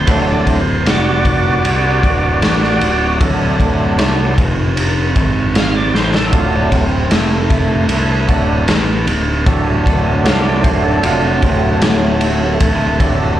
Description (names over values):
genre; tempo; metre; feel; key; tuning
blues rock power trio and southern rock; 77 BPM; 4/4; straight; D mixolydian; A4 = 440 Hz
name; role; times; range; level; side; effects
overdriven tonewheel organ; sustained chords; 0.0-13.4 s; F#3 to F5; -17 LUFS; right 2 dB; lush chorus, plate reverb
fuzz picked electric bass; bass; 0.0-13.4 s; D1 to C2; -16 LUFS; left 1 dB; overdrive
raw garage drum kit; drums; 0.1-13.2 s; kick drum, ride cymbal, snare drum; -15 LUFS; equal; none
room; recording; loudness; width
light reverb; live gig heard through the venue's PA, club reverb; -12 LUFS; side -12 dB against mid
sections
0.0-13.4 A section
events
tonewheel organ solo 0.0-13.4; drum fill 5.9-6.3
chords
0.0 D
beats
| 0.07 0.86 1.64 2.42 | 3.20 3.98 4.77 5.55 | 6.33 7.12 7.90 8.69 | 9.47 10.26 11.04 11.82 | 12.61 13.39